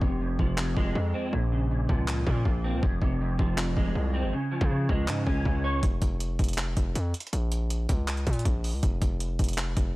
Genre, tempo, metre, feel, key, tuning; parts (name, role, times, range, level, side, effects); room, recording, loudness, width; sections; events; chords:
hip hop, trap; 160 BPM; 4/4; half-time; A4 = 436 Hz
clean electric guitar; accompaniment; 0.0-5.8 s; F2 to Db5; -29 LUFS; right 1 dB; ensemble chorus, low-pass filter
distorted 808-style bass; bass; 0.0-9.9 s; F1 to Db3; -28 LUFS; equal; distortion
breakbeat sampler-style drum kit; drums; 0.0-9.9 s; handclaps, hi-hat, kick drum; -28 LUFS; equal
little or no reverb; -25 LUFS; side -19 dB against mid
0.0-10.0 A section
break 0.0-5.8
0.0 Fm; 1.3 Bbmadd9; 2.8 Fm; 4.3 Db; 5.8 N.C.; 7.3 Bbm; 8.8 N.C.